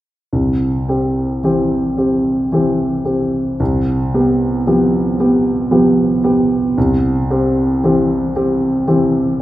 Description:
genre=classical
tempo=56 BPM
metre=3/4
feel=rubato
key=C major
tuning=A4 = 443 Hz
part: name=warm grand piano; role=accompaniment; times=0.3-9.4 s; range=C2 to G4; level=-13 LUFS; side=equal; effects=none
room=wet recital hall reverb, RT60 1.6 s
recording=heard from further back in the room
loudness=-13 LUFS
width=side -14 dB against mid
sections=0.3-9.4 A section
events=none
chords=0.3 C; 3.6 G7/C; 6.8 C

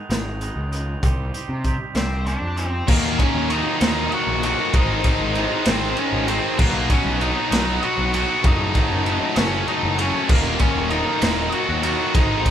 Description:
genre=quiet-loud alternative rock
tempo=65 BPM (dotted quarters)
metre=6/8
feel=straight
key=Eb minor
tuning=A4 = 441 Hz
part: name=twangy electric guitar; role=arpeggios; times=0.0-2.9 s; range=C3 to G4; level=-32 LUFS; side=right 5 dB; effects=none
part: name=fuzz picked electric bass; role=bass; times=0.1-12.4 s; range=Eb1 to C3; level=-26 LUFS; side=equal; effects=overdrive
part: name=raw garage drum kit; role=drums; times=0.1-12.5 s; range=crash cymbal, hi-hat, kick drum, ride cymbal, snare drum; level=-22 LUFS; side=equal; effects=none
part: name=octave-fuzz lead guitar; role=melody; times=2.0-12.5 s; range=Bb3 to Gb5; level=-25 LUFS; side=left 2 dB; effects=distortion
part: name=distorted electric guitar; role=riff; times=2.9-12.5 s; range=Eb2 to F#4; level=-26 LUFS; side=left 5 dB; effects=distortion
part: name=heavy high-gain guitar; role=riff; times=2.9-12.5 s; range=Eb2 to B3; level=-26 LUFS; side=right 1 dB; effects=distortion
part: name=high-gain distorted guitar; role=riff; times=2.9-12.5 s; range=Eb2 to F#4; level=-27 LUFS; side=right 8 dB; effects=distortion
room=light reverb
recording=band playing live in one room, lossy compression artefacts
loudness=-18 LUFS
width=side -10 dB against mid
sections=0.0-2.9 A section; 2.9-12.5 B section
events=none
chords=0.0 Abm; 1.0 Cm; 2.9 Ebm; 4.7 Ab; 6.6 B; 8.4 Gbm; 10.3 Ebm

